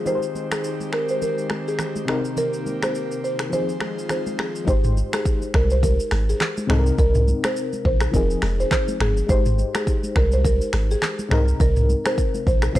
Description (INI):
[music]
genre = afrobeats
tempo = 104 BPM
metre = 4/4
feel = swing 58% on 16ths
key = Ab major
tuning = A4 = 439 Hz
[part]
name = FM electric piano with tremolo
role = accompaniment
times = 0.0-12.8 s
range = C3 to C5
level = -28 LUFS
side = left 3 dB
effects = low-pass filter
[part]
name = airy breathy pad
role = sustained chords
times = 0.0-4.7 s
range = Eb3 to C5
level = -31 LUFS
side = equal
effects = chorus, low-pass filter
[part]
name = buzzing marimba with medium mallets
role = melody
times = 0.1-12.8 s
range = Ab4 to C5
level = -26 LUFS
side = equal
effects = low-pass filter, tape echo
[part]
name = afro-pop drum kit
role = drums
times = 0.1-12.8 s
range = finger snaps, handclaps, hi-hat, kick drum, rim click, shaker, toms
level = -23 LUFS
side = equal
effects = vintage 12-bit sampler grit
[part]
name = congas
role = percussion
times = 0.1-12.8 s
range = none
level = -33 LUFS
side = right 2 dB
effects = none
[part]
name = punchy sub bass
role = bass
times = 4.7-12.8 s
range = F1 to C2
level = -20 LUFS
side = equal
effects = tube saturation
[sound]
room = little or no reverb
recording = dry, gritty hardware recording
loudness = -19 LUFS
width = side -14 dB against mid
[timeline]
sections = 0.0-4.7 A section; 4.7-12.8 B section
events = none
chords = 0.1 Abmaj7; 2.1 Cm7; 3.5 Fm7; 4.7 Abmaj7; 6.7 Cm7; 8.1 Fm7; 9.3 Abmaj7; 11.3 Cm7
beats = | 0.06 0.64 1.22 1.79 | 2.37 2.95 3.52 4.10 | 4.68 5.25 5.83 6.41 | 6.99 7.56 8.14 8.72 | 9.29 9.87 10.45 11.02 | 11.60 12.18 12.76